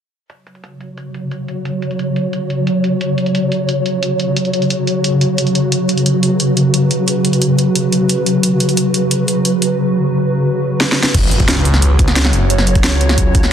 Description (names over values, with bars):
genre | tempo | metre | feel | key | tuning
dark technical drum and bass | 177 BPM | 4/4 | straight | unclear | A4 = 440 Hz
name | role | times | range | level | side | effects
swarming drone | sustained chords | 1.0-13.5 s | C#3 to C#5 | -15 LUFS | equal | built-in reverb, sidechain pumping
drum and bass drum kit | drums | 0.3-13.5 s | crash cymbal, hi-hat, snare drum | -18 LUFS | equal | overdrive, low-pass filter on hats, low-pass filter on snare, low-pass filter on cymbals, low-pass filter on room
phased detuned saw bass | bass | 11.1-13.5 s | F#1 to C#2 | -14 LUFS | equal | phaser, overdrive, sidechain pumping
electronic kick drum | drums | 11.1-13.4 s | none | -14 LUFS | equal | overdrive
impact | sound effects | 11.1-12.5 s | none | -22 LUFS | equal | none
room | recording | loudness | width
moderate lush hall reverb, RT60 1.8 s | dense, heavily limited modern master | -12 LUFS | side -8 dB against mid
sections
0.3-11.1 A section; 11.1-13.5 B section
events
filter sweep on synth drone 0.3-11.1; drum fill 10.8-11.1; drop 11.1-13.5; impact 11.1-12.5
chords
0.3 F#5